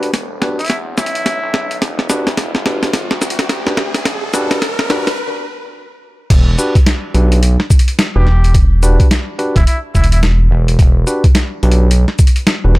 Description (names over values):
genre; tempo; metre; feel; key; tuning
glitch hop; 107 BPM; 4/4; swing 61% on 16ths; E minor; A4 = 438 Hz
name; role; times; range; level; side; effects
bright tine electric piano; stabs; 0.0-12.8 s; D4 to B4; -21 LUFS; equal; sidechain pumping, low-pass filter, digital delay
gritty driven synth bass; bass; 0.0-12.1 s; E1 to E2; -16 LUFS; equal; high-pass filter
boom bap sampler-style drum kit; drums; 0.0-12.8 s; crash cymbal, hi-hat, shaker, snare drum; -18 LUFS; equal; small room ambience
riser; sound effects; 0.0-5.2 s; none; -24 LUFS; equal; none
clear trumpet; melody; 0.6-1.8, 8.2-10.2 s; E4 to G4; -23 LUFS; equal; vintage 12-bit sampler grit, digital delay
electronic kick drum; drums; 6.3-12.3 s; none; -10 LUFS; equal; small room ambience
rubbery square bass; bass; 8.2-12.8 s; E1; -10 LUFS; equal; none
room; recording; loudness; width
little or no reverb; none; -11 LUFS; side -20 dB against mid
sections
0.0-6.3 A section; 6.3-12.8 B section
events
build-up 0.0-6.3; drum fill 0.0-5.2; riser 0.0-5.2; break 5.2-6.3; drop 6.3-12.8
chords
0.0 Em9